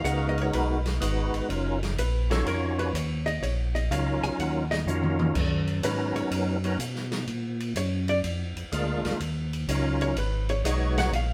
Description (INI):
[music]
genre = soul jazz organ trio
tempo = 125 BPM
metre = 4/4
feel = swing 67% on 8ths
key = Eb minor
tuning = A4 = 441 Hz
[part]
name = percussive tonewheel organ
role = melody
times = 0.0-11.1 s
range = Gb3 to Db5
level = -32 LUFS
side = equal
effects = slow rotary speaker, overdrive, chorus vibrato
[part]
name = archtop guitar, miked and amplified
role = accompaniment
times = 0.0-11.3 s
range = A4 to Ab5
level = -34 LUFS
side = equal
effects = none
[part]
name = tonewheel organ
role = bass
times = 0.0-11.3 s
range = Gb1 to B2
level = -31 LUFS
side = equal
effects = overdrive, chorus vibrato, slow rotary speaker
[part]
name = open jazz drum kit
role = drums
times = 0.0-11.3 s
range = crash cymbal, hi-hat, kick drum, ride cymbal, snare drum, toms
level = -36 LUFS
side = equal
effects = none
[sound]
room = moderate stone room reverb, RT60 1.2 s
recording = band playing live in one room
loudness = -27 LUFS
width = mono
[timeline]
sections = 0.0-11.3 A section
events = hollow-body jazz guitar solo 0.0-11.3; drum fill 4.9-5.3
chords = 0.0 Abm9; 1.5 Ebm9; 5.3 Bmaj7; 7.3 Bb7; 9.2 Ebm9; 10.2 Abm7